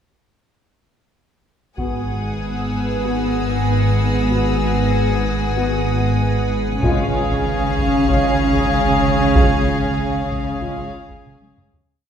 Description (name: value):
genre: cinematic, suspense film score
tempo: 95 BPM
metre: 4/4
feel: straight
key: G# dorian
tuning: A4 = 440 Hz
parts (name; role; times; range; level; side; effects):
- warm studio violin section; melody; 1.8-11.7 s; E#5 to F#5; -29 LUFS; left 2 dB; none
- warm studio violin section; second line; 1.8-11.6 s; G#4; -25 LUFS; left 2 dB; none
- dark studio viola section; accompaniment; 1.8-11.6 s; B3 to C#4; -24 LUFS; right 1 dB; none
- icy glass pad; sustained chords; 2.4-11.9 s; B4 to G#5; -28 LUFS; right 2 dB; chorus, built-in reverb
- warm French horn section; sustained chords; 1.8-10.8 s; G#3 to F#4; -28 LUFS; left 2 dB; none
- warm studio cello section; bass; 1.8-11.7 s; G#2 to C#3; -23 LUFS; equal; none
- warm studio double bass section; bass; 1.8-11.7 s; G#1 to C#2; -26 LUFS; right 2 dB; none
- saturated sub bass; drone; 1.8-11.8 s; G#1; -25 LUFS; left 1 dB; none
- taiko ensemble; drums; 1.8-3.0, 6.8-12.0 s; none; -22 LUFS; equal; none
- dark studio violin section; texture; 1.8-6.5 s; D#6 to A#6; -33 LUFS; left 2 dB; none
room: wet scoring stage reverb, RT60 1.8 s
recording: heard from further back in the room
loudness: -16 LUFS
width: side -8 dB against mid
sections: 1.8-11.9 A section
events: fade-out 9.4-11.9; drum fill 11.3-11.9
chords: 1.8 G#m7; 6.8 C#/G#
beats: | 1.79 2.42 3.05 3.68 | 4.31 4.94 5.58 6.21 | 6.84 7.47 8.10 8.73 | 9.37 10.00 10.63 11.26